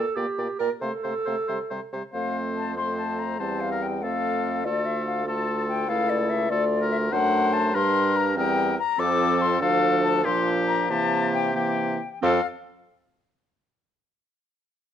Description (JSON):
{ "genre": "quick classical-period movement for wind quintet", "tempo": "88-98 BPM (dotted quarters)", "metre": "6/8", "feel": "rubato", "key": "F major", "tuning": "A4 = 444 Hz", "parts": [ { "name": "clear oboe", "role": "second line", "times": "0.0-12.4 s", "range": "G4 to D5", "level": "-29 LUFS", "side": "left 3 dB", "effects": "none" }, { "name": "mellow French horn", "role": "accompaniment", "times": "0.0-12.4 s", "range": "E3 to Bb3", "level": "-31 LUFS", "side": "right 1 dB", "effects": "none" }, { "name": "mellow clarinet", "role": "accompaniment", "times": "0.0-12.4 s", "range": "Bb3 to Bb4", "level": "-30 LUFS", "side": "right 7 dB", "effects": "none" }, { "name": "warm bassoon", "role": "bass", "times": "0.0-12.4 s", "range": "C#2 to C3", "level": "-29 LUFS", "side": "right 2 dB", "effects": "none" }, { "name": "mellow silver concert flute", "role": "melody", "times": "0.2-12.5 s", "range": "D5 to D6", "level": "-26 LUFS", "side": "left 7 dB", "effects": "none" } ], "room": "light reverb", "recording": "worn, warbling old tape, cassette tape, warbly pitch drift", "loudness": "-22 LUFS", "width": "side -9 dB against mid", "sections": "0.0-2.1 A section; 2.1-12.2 B section; 12.2-13.5 C section", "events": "none", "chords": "0.0 Gm/Bb; 0.8 F/C (rootless); 1.5 C5; 2.1 F; 3.4 C/E; 4.0 F; 4.7 Dm; 5.9 A/C#; 6.5 Dm; 7.1 D7/F#; 7.7 Gm; 8.4 C7/E; 9.0 F; 9.6 Dm; 10.3 Gm7/Bb; 10.9 C7; 12.2 F5", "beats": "0.17 | 0.82 1.48 | 2.14 2.77 | 3.40 4.03 | 4.66 5.28 | 5.89 6.50 | 7.12 7.75 | 8.37 8.99 | 9.62 10.25 | 10.90 11.55 | 12.22" }